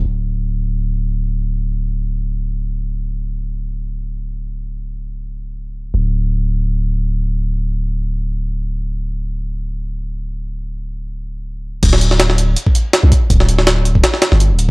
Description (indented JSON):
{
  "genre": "drum and bass, jungle",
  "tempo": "free time",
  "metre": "none",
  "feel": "none",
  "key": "unclear",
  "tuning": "A4 = 440 Hz",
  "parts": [
    { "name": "long sustained 808-style bass", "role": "bass", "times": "0.0-14.7 s", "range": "D1 to C2", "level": "-17 LUFS", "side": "equal", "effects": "none" },
    { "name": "jungle sampler-style drum kit", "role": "drums", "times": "11.8-14.7 s", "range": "crash cymbal, hi-hat, kick drum, snare drum", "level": "-13 LUFS", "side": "equal", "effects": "none" }
  ],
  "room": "little or no reverb",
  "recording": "dry, gritty hardware recording",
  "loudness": "-15 LUFS",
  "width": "side -26 dB against mid",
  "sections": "0.0-11.8 A section; 11.8-14.7 B section",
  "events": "drop 11.8-14.7",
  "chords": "none"
}